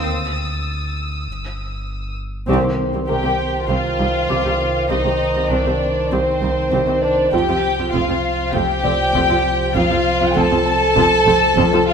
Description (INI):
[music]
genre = cinematic, suspense film score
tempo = 99 BPM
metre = 4/4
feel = straight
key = C dorian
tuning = A4 = 438 Hz
[part]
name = dark studio viola section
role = accompaniment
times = 0.0-11.8 s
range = G3 to G4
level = -24 LUFS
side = right 1 dB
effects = none
[part]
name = rich symphonic cello section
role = bass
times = 0.0-11.8 s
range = C2 to F2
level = -26 LUFS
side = right 3 dB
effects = none
[part]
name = sub bass with octave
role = drone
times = 0.0-11.9 s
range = G1 to D2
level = -26 LUFS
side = equal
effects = none
[part]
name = dark studio violin section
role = texture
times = 0.0-7.0 s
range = G5 to Bb6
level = -30 LUFS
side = left 3 dB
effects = none
[part]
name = felt-muted upright piano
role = texture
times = 0.0-11.9 s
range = Bb4 to D6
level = -31 LUFS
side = right 1 dB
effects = none
[part]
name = dark French horn section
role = sustained chords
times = 2.5-11.9 s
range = Eb3 to C5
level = -22 LUFS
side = equal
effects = none
[part]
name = rich studio double bass section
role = bass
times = 2.5-11.6 s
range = F1 to C2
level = -26 LUFS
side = right 4 dB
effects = none
[part]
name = timpani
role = percussion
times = 2.5-3.3 s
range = C3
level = -29 LUFS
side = right 1 dB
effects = none
[part]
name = dark studio violin section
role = melody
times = 3.1-11.9 s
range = C5 to A5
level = -21 LUFS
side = left 3 dB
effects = none
[part]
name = warm studio violin section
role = second line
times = 3.1-11.9 s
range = C4 to A4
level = -21 LUFS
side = right 1 dB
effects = none
[sound]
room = wet scoring stage reverb, RT60 1.5 s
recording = none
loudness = -15 LUFS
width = side -6 dB against mid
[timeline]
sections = 0.0-2.5 A section; 2.5-11.9 B section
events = break 0.1-2.5; band accent 2.5-3.1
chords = 0.1 Bb/D; 1.3 Emmaj7/G; 2.5 Cmadd9; 7.3 F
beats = | 0.05 0.66 1.27 1.87 | 2.48 3.08 3.69 4.30 | 4.90 5.51 6.11 6.72 | 7.33 7.93 8.54 9.14 | 9.75 10.36 10.96 11.57